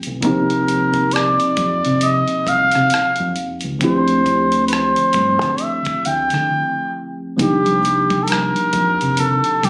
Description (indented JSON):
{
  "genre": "R&B, neo-soul",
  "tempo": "67 BPM",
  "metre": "4/4",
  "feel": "swing 59% on 16ths",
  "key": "C dorian",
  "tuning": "A4 = 445 Hz",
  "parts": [
    { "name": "tine electric piano", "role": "accompaniment", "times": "0.0-9.7 s", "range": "F3 to G4", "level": "-23 LUFS", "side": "equal", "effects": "overdrive, phaser" },
    { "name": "dusty soul sampler-style drum kit", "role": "drums", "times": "0.0-9.7 s", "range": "hi-hat, kick drum, rim click", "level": "-27 LUFS", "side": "equal", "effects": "none" },
    { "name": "deep dub fingered electric bass", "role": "bass", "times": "0.1-9.7 s", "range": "B1 to D3", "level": "-26 LUFS", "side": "equal", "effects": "none" },
    { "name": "trumpet with cup mute", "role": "melody", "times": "0.2-9.7 s", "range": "G4 to G5", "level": "-20 LUFS", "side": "equal", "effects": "slapback echo" },
    { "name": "congas", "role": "percussion", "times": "7.4-9.7 s", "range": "none", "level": "-30 LUFS", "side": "equal", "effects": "none" }
  ],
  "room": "light reverb",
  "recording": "recorded on a phone in the room, club reverb, compression",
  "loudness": "-17 LUFS",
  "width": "mono",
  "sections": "0.0-7.4 A section; 7.4-9.7 A section",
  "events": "break 6.5-7.4",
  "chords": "0.2 Cm11; 3.8 Dm11; 7.4 Cm11"
}